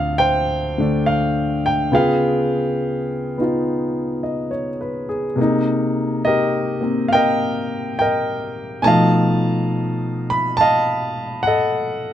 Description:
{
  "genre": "solo jazz",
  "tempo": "69 BPM",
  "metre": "4/4",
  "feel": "swing 69% on 8ths",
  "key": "unclear",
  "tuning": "A4 = 440 Hz",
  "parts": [
    { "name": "warm concert grand piano", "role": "solo", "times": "0.0-12.1 s", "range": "D2 to B5", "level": "-17 LUFS", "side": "equal", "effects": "none" }
  ],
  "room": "light reverb",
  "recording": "close, detailed microphones",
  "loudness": "-17 LUFS",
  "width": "side -11 dB against mid",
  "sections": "0.0-12.1 A section",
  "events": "none",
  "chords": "0.0 Dm7; 1.9 Db7#11; 5.4 Cm7; 8.8 B7#11"
}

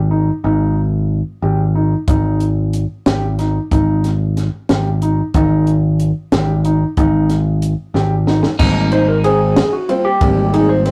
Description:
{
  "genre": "progressive instrumental, band music in an uneven meter",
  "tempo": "184 BPM (eighths)",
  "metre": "5/8",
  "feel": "straight",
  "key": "Ab major",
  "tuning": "A4 = 440 Hz",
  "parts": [
    { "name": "picked electric bass", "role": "bass", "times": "0.0-10.9 s", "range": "Ab1", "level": "-18 LUFS", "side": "equal", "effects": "none" },
    { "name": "warm baby grand piano", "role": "arpeggios", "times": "0.1-10.9 s", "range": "C4 to G4", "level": "-21 LUFS", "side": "equal", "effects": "none" },
    { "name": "compact cocktail drum kit", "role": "drums", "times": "2.1-10.9 s", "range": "crash cymbal, hi-hat, kick drum, ride cymbal, snare drum", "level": "-21 LUFS", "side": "equal", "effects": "none" },
    { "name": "clean electric guitar", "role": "second line", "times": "8.6-10.9 s", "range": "Eb4", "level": "-27 LUFS", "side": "equal", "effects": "none" },
    { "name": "tine electric piano", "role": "accompaniment", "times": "8.6-10.9 s", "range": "G3 to C5", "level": "-18 LUFS", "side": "equal", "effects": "none" }
  ],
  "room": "moderate studio reverb, RT60 0.7 s",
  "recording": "rough rehearsal-room recording, tube saturation",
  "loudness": "-16 LUFS",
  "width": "mono",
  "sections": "0.0-8.6 A section; 8.6-10.9 B section",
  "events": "drum fill 7.9-8.6; tine electric piano solo 8.6-10.9",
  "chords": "0.0 Ab5; 8.6 Abmaj7"
}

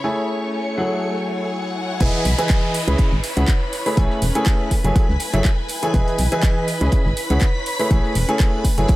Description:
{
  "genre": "piano house",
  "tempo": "122 BPM",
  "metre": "4/4",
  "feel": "swing 54% on 16ths",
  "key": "unclear",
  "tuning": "A4 = 440 Hz",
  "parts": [
    { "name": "string machine, violins", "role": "sustained chords", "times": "0.0-9.0 s", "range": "B4 to C#6", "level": "-30 LUFS", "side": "right 1 dB", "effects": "ensemble chorus, sidechain pumping" },
    { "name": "warm grand piano", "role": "riff", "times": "0.0-9.0 s", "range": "C#3 to B5", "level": "-22 LUFS", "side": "equal", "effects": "sidechain pumping, dub echo" },
    { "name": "warm studio string section", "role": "texture", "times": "0.0-9.0 s", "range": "A3 to B5", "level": "-29 LUFS", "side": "left 2 dB", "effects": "sidechain pumping" },
    { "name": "solid FM bass", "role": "bass", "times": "2.0-8.9 s", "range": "E1 to C#2", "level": "-20 LUFS", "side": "equal", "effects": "sidechain pumping" },
    { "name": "cloth-damped thuddy drum kit", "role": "drums", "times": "2.0-9.0 s", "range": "hi-hat, snare drum", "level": "-37 LUFS", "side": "left 1 dB", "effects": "none" },
    { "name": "electronic kick drum", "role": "drums", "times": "2.0-9.0 s", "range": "none", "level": "-18 LUFS", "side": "equal", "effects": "none" },
    { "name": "house drum kit", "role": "drums", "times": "2.0-9.0 s", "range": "crash cymbal, handclaps, hi-hat", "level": "-28 LUFS", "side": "right 2 dB", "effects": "none" },
    { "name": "downlifter", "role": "sound effects", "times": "2.0-5.9 s", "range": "none", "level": "-31 LUFS", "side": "equal", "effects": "none" }
  ],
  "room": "small room ambience",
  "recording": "none",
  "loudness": "-17 LUFS",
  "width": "side -17 dB against mid",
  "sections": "0.0-2.0 A section; 2.0-9.0 B section",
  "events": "drop 2.0-9.0",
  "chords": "0.0 Amaj7; 0.8 F#m9; 2.0 Emaj7; 2.7 C#m7; 4.0 Amaj7; 4.7 F#m9; 5.9 Emaj7; 6.7 C#m7; 7.9 Amaj7"
}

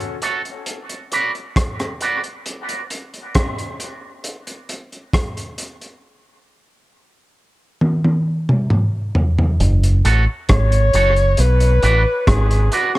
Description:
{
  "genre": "dub reggae",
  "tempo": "67 BPM",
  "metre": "4/4",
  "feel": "straight",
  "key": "F# minor",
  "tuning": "A4 = 439 Hz",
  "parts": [
    { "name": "crunchy breakbeat drum kit", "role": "drums", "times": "0.0-13.0 s", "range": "hi-hat, kick drum, rim click, toms", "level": "-19 LUFS", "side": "equal", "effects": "none" },
    { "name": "electric guitar with an envelope filter", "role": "accompaniment", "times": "0.2-2.2, 10.0-12.9 s", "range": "F#4 to D5", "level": "-23 LUFS", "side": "right 4 dB", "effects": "dub echo" },
    { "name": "deep dub fingered electric bass", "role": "bass", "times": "9.6-12.7 s", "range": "F#1 to B1", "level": "-14 LUFS", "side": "equal", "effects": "none" },
    { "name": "clear flugelhorn", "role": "melody", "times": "10.5-13.0 s", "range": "F#4 to C#5", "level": "-19 LUFS", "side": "left 1 dB", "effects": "dub echo" }
  ],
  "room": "light reverb, small room ambience",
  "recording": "none",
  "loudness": "-15 LUFS",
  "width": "side -18 dB against mid",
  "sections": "0.0-9.6 A section; 9.6-13.0 B section",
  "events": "drum fill 7.8-9.6",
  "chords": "0.0 F#m; 0.7 Bm; 2.5 N.C.; 9.6 F#m; 11.4 Bm"
}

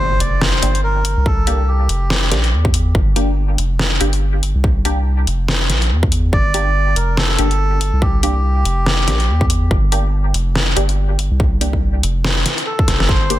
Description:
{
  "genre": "deep dubstep",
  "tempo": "142 BPM",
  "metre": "4/4",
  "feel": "swing 58% on 16ths, half-time",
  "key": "G dorian",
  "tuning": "A4 = 441 Hz",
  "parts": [
    { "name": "melodica", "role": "melody", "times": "0.0-2.5, 6.3-9.5, 12.7-13.4 s", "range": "G4 to D5", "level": "-22 LUFS", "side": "right 1 dB", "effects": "dub echo" },
    { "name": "soft dub sub bass", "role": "bass", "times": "0.0-13.4 s", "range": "F1 to E2", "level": "-17 LUFS", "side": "equal", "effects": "none" },
    { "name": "impact", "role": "sound effects", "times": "0.0-1.3 s", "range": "none", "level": "-28 LUFS", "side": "equal", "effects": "none" },
    { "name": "dubstep drum kit", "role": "drums", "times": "0.2-13.4 s", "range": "hi-hat, snare drum", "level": "-19 LUFS", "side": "left 1 dB", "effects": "none" },
    { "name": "filtered dub chord stab", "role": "stabs", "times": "0.6-13.4 s", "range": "Bb3 to G4", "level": "-25 LUFS", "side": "left 1 dB", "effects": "phaser, dub echo" },
    { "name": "electronic kick drum", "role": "drums", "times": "1.3-13.2 s", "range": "none", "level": "-17 LUFS", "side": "equal", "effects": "none" }
  ],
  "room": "little or no reverb",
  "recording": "dense, heavily limited modern master",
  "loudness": "-14 LUFS",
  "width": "side -14 dB against mid",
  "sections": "0.0-13.4 A section",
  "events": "impact 0.0-1.3; drum fill 12.9",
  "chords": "0.0 Gm"
}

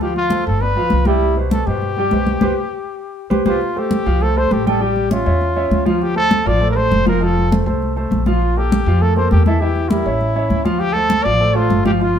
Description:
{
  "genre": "Afro-Cuban jazz",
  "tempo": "200 BPM",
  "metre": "4/4",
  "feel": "straight",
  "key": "C major, F major from 3.6 s",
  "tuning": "A4 = 440 Hz",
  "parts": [
    { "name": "breathy trumpet", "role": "melody", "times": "0.0-12.2 s", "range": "E4 to D5", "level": "-20 LUFS", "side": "left 1 dB", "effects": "none" },
    { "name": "warm grand piano", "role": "accompaniment", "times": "0.0-12.2 s", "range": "B2 to G5", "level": "-20 LUFS", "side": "right 1 dB", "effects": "none" },
    { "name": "upright bass", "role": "bass", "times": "0.0-12.2 s", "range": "F1 to G2", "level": "-19 LUFS", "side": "equal", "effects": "none" },
    { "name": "congas", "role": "percussion", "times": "0.0-12.2 s", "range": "none", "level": "-21 LUFS", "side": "left 1 dB", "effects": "none" }
  ],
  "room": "moderate studio reverb, RT60 0.9 s",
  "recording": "band playing live in one room",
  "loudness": "-14 LUFS",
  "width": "side -8 dB against mid",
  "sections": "0.0-3.6 A section; 3.6-12.2 B section",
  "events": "band accent 2.4-3.6",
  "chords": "0.0 Dm7; 0.6 G7; 1.2 C5; 3.6 Fadd9; 4.8 A7b13; 6.0 Dm7; 7.2 F; 8.4 Bb5; 9.6 Edim; 10.2 A; 10.8 Dm7"
}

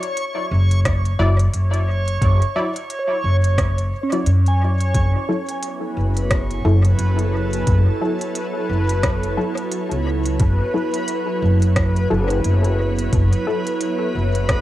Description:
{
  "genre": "ambient dub",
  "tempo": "88 BPM",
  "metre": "4/4",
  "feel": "swing 59% on 16ths",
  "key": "F# minor",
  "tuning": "A4 = 435 Hz",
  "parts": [
    { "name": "soft synth bell", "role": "arpeggios", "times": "0.0-7.2 s", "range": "C#4 to G#5", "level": "-29 LUFS", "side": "right 2 dB", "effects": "chorus, cassette tape, tape echo" },
    { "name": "organic electronic drum kit", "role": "drums", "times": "0.0-14.6 s", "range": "hi-hat, rim click", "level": "-27 LUFS", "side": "equal", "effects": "small room ambience, dub echo" },
    { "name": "backwards swelling texture", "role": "texture", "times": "0.0-14.6 s", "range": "B4 to C#5", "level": "-27 LUFS", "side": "left 1 dB", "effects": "built-in reverb, cassette tape" },
    { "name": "upright bass", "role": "bass", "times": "0.5-14.6 s", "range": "F#1 to F#2", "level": "-17 LUFS", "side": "equal", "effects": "none" },
    { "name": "electronic kick drum", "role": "drums", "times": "0.9-14.6 s", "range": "none", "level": "-21 LUFS", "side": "equal", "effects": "overdrive, small room ambience" },
    { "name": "filtered dub chord stab", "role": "stabs", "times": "1.2-13.6 s", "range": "F#3 to D5", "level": "-26 LUFS", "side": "left 2 dB", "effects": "chorus, cassette tape, dub echo" },
    { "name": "soft additive organ-like pad", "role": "sustained chords", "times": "5.5-14.6 s", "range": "F#3 to C#5", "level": "-25 LUFS", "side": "right 3 dB", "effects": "ensemble chorus, built-in reverb, cassette tape" }
  ],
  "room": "little or no reverb",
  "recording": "home recording on cassette",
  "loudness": "-17 LUFS",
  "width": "side -14 dB against mid",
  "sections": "0.0-4.9 A section; 4.9-14.6 A section",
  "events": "none",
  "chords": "0.0 Dadd9/F#; 4.9 F#m7"
}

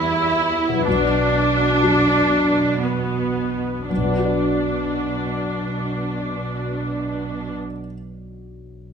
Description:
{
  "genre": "cinematic, emotional film score for orchestra",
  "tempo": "54-66 BPM",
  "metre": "3/4",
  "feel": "rubato",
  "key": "B minor",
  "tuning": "A4 = 440 Hz",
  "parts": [
    { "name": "clear symphonic viola section", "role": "accompaniment", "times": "0.0-7.6 s", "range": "B3 to E4", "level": "-20 LUFS", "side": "right 1 dB", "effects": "none" },
    { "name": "dark concert grand piano", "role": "accompaniment", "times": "0.0-8.9 s", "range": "B1 to D5", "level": "-26 LUFS", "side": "left 1 dB", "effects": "none" },
    { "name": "concert harp", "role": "arpeggios", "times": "0.0-7.9 s", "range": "B2 to D5", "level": "-29 LUFS", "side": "left 10 dB", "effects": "none" },
    { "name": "rich symphonic cello section", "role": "bass", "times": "0.0-7.6 s", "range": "E2 to B2", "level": "-27 LUFS", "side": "right 4 dB", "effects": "none" }
  ],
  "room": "moderate recital hall reverb, RT60 1.4 s",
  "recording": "none",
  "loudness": "-18 LUFS",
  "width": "side -6 dB against mid",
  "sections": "0.0-3.9 A section; 3.9-7.1 B section",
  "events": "slowing down 0.0-3.9",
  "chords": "0.0 Emadd9; 0.9 Bm"
}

